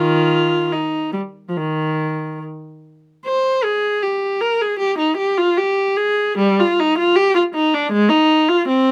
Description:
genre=classical, baroque-style suite movement for unaccompanied viola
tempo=69-81 BPM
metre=4/4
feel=rubato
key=Eb major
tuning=A4 = 440 Hz
part: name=rich viola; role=solo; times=0.0-8.9 s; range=Eb3 to C5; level=-18 LUFS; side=equal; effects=none
room=light reverb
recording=close, detailed microphones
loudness=-18 LUFS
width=mono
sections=0.0-3.3 A section; 3.3-8.9 A section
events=none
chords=none

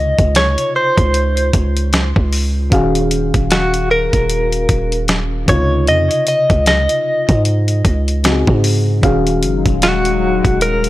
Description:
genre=contemporary R&B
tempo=76 BPM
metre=4/4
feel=swing 58% on 16ths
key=unclear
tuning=A4 = 440 Hz
part: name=direct-recorded clean electric guitar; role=melody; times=0.0-10.9 s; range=Gb4 to Eb5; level=-16 LUFS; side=equal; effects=tremolo, tape echo
part: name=mellow FM electric piano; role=accompaniment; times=0.0-10.9 s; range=C3 to F5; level=-20 LUFS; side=left 2 dB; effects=chorus
part: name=warm 808-style bass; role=bass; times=0.0-10.9 s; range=Eb1 to Ab2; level=-16 LUFS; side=equal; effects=none
part: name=dusty soul sampler-style drum kit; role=drums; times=0.2-10.9 s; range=hi-hat, kick drum, snare drum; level=-17 LUFS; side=equal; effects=none
part: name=hollow soft pad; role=sustained chords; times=9.0-10.9 s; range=Eb3 to F5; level=-21 LUFS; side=left 6 dB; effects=chorus, sidechain pumping
room=digital ambience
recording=dry, gritty hardware recording, transformer saturation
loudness=-12 LUFS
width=side -16 dB against mid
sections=0.0-10.9 A section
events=none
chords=0.0 Dbmaj9; 2.7 Ebm11; 5.5 Dbmaj9; 9.0 Ebm11

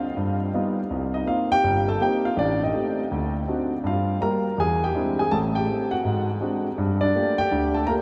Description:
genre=solo jazz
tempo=163 BPM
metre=4/4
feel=swing 65% on 8ths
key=G minor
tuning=A4 = 440 Hz
part: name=warm concert grand piano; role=solo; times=0.0-8.0 s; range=G1 to Bb5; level=-24 LUFS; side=equal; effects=analog delay
room=wet huge ambient reverb, RT60 7.6 s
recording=dreamy mix soaked in reverb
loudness=-24 LUFS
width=mono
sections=0.0-8.0 A section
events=none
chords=0.2 Gaug7; 0.9 Cm7; 2.4 Am7b5; 3.1 D7b9; 3.8 Gm7; 4.6 E7alt; 5.3 Am7; 6.0 Ab7#11; 6.8 Gm9

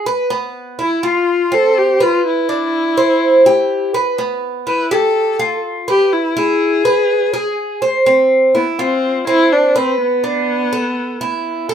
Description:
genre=latin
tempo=124 BPM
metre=4/4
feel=straight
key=unclear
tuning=A4 = 440 Hz
part: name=Cuban tres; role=arpeggios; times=0.0-11.7 s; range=B3 to C5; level=-15 LUFS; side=right 1 dB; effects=none
part: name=clear viola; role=melody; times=0.8-11.7 s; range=B3 to B4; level=-16 LUFS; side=left 2 dB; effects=none
room=wet studio reverb, RT60 0.6 s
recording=rough home demo mix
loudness=-13 LUFS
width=side -8 dB against mid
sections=0.0-8.1 A section; 8.1-11.7 A section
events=none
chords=0.3 Bsus4; 1.3 F5; 2.2 Cmaj9/D; 3.2 C; 4.2 Emadd11/B; 5.2 Fadd9; 6.1 E; 8.1 C; 9.0 F5; 10.0 Bm7; 11.0 A5

